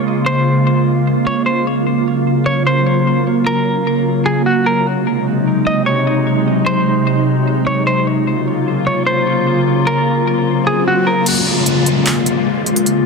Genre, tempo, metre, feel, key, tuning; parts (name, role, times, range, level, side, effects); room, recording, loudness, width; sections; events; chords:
hip hop, atmospheric cloud-rap; 150 BPM; 4/4; half-time; Db major; A4 = 440 Hz
semi-hollow electric guitar; melody; 0.0-11.3 s; Gb4 to Eb5; -18 LUFS; equal; harmonic tremolo, ping-pong delay
glassy FM pad; sustained chords; 0.0-13.1 s; C3 to F4; -14 LUFS; equal; ensemble chorus, built-in reverb
swell and downlifter; sound effects; 10.3-13.1 s; -22 LUFS; right 1 dB
trap drum kit; drums; 11.3-13.0 s; crash cymbal, handclaps, hi-hat; -18 LUFS; left 1 dB
moderate digital room reverb, RT60 1.1 s; dense, heavily limited modern master; -13 LUFS; side -4 dB against mid
0.0-11.3 A section; 11.3-13.1 B section
swell 10.3-11.3; kick muted 11.3-13.1
0.0 Db6; 1.7 Gbmaj7; 4.9 Ab7; 8.1 Gbmaj7; 11.3 Db6